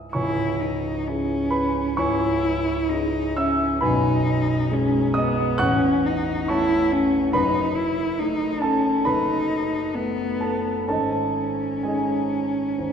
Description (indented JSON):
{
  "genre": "classical, romantic duo for cello and grand piano",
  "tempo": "67 BPM",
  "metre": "4/4",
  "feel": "uneven beats, rubato",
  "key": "C# minor",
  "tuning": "A4 = 441 Hz",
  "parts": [
    { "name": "warm grand piano", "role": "accompaniment", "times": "0.0-12.9 s", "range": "A0 to F#6", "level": "-23 LUFS", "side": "right 1 dB", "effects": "none" },
    { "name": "warm cello", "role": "melody", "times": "0.1-12.9 s", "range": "B3 to E4", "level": "-23 LUFS", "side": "left 1 dB", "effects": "none" }
  ],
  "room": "wet scoring stage reverb, RT60 1.6 s",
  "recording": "dark, warm production",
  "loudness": "-20 LUFS",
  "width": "side -7 dB against mid",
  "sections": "0.1-12.9 A section",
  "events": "none",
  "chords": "0.1 C#m; 3.8 G#m/B; 5.6 A; 7.3 D#dim/F#; 10.9 G#sus4",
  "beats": "| 0.15 1.09 2.00 2.91 | 3.83 4.73 5.62 6.49 | 7.35 8.20 9.06 9.96 | 10.90 11.83 12.77"
}